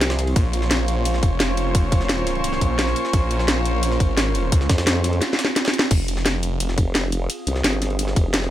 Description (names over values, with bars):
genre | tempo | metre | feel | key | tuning
dark technical drum and bass | 173 BPM | 4/4 | straight | F minor | A4 = 440 Hz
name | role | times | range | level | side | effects
dark chamber string section | sustained chords | 0.0-5.9 s | F3 to Db5 | -27 LUFS | left 1 dB | sidechain pumping
formant-sweep wobble bass | bass | 0.0-0.3, 4.7-8.5 s | F1 to F2 | -22 LUFS | equal | chorus
drum and bass drum kit | drums | 0.0-8.4 s | crash cymbal, hi-hat, snare drum | -22 LUFS | equal | none
jungle sampler-style drum kit | drums | 0.0-8.5 s | ride cymbal, snare drum | -31 LUFS | equal | high-pass filter on cymbals, high-pass filter on snare
warbly tape-like pad | texture | 0.0-8.5 s | Ab3 to F5 | -30 LUFS | right 4 dB | chorus, built-in reverb, sidechain pumping
snarling distorted saw bass | bass | 0.4-6.8 s | F1 to Db2 | -23 LUFS | equal | distortion, tube saturation
electronic kick drum | drums | 0.4-8.2 s | none | -18 LUFS | equal | overdrive
room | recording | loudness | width
little or no reverb | none | -18 LUFS | side -13 dB against mid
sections
0.0-5.9 A section; 5.9-8.5 A section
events
drop 0.0-5.9, 5.9-8.5; drum fill 5.2-5.9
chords
0.4 Bbm; 5.9 Fm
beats
0.01 | 0.36 0.71 1.05 1.40 | 1.75 2.09 2.44 2.79 | 3.13 3.48 3.83 4.17 | 4.52 4.87 5.22 5.56 | 5.91 6.26 6.60 6.95 | 7.30 7.64 7.99 8.34